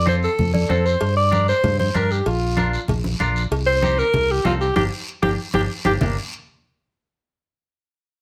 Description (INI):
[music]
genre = latin, cumbia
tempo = 192 BPM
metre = 4/4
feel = straight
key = G minor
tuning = A4 = 440 Hz
[part]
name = breathy alto saxophone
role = melody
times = 0.0-5.9 s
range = F4 to D5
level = -23 LUFS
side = equal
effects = slapback echo
[part]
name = fingered electric bass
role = bass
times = 0.0-6.2 s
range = G1 to G2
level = -25 LUFS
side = equal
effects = none
[part]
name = semi-hollow electric guitar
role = accompaniment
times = 0.1-6.2 s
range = Bb3 to Bb4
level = -29 LUFS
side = equal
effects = none
[part]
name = congas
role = percussion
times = 0.1-6.1 s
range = none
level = -27 LUFS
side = equal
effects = none
[part]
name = guiro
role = percussion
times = 0.1-6.1 s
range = none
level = -37 LUFS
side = equal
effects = none
[part]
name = celesta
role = second line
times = 0.5-1.1, 6.0-6.2 s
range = Bb4 to D5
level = -28 LUFS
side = equal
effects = none
[part]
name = cowbell and timbales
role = percussion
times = 1.0-6.1 s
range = none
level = -31 LUFS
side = equal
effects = none
[sound]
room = light reverb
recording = none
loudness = -20 LUFS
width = mono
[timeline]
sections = 0.0-6.0 A section; 6.0-7.3 B section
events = drum fill 4.8-6.0; band accent 4.8-6.0; clean electric guitar fill 5.4-6.0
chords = 0.0 F; 1.0 Gm; 2.3 Bb; 3.5 Cm7; 4.8 Gm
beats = 0.07 0.39 0.70 | 1.01 1.32 1.64 1.95 | 2.26 2.57 2.89 3.20 | 3.51 3.82 4.14 4.45 | 4.76 5.07 5.39 5.70 | 6.01